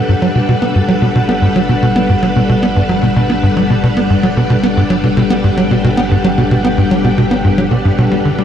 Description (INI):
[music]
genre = ambient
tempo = 112 BPM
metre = 4/4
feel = straight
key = G major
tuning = A4 = 440 Hz
[part]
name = string machine, full ensemble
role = sustained chords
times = 0.0-8.4 s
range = G3 to B4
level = -16 LUFS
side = left 2 dB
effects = ensemble chorus
[part]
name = analog drone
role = bass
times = 1.0-8.4 s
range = G1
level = -29 LUFS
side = equal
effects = chorus
[part]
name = wind-like tuned noise texture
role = texture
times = 0.0-8.4 s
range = F#5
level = -22 LUFS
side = right 1 dB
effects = built-in reverb
[part]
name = tight sequencer bass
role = riff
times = 0.1-8.4 s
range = G2 to B3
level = -12 LUFS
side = equal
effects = lush chorus, tape echo
[sound]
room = wet cathedral reverb, RT60 7.4 s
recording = in a vast, echoing space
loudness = -10 LUFS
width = side -9 dB against mid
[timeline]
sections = 0.0-8.4 A section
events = fade-in on synth drone 0.0-8.4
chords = 0.0 Gmaj7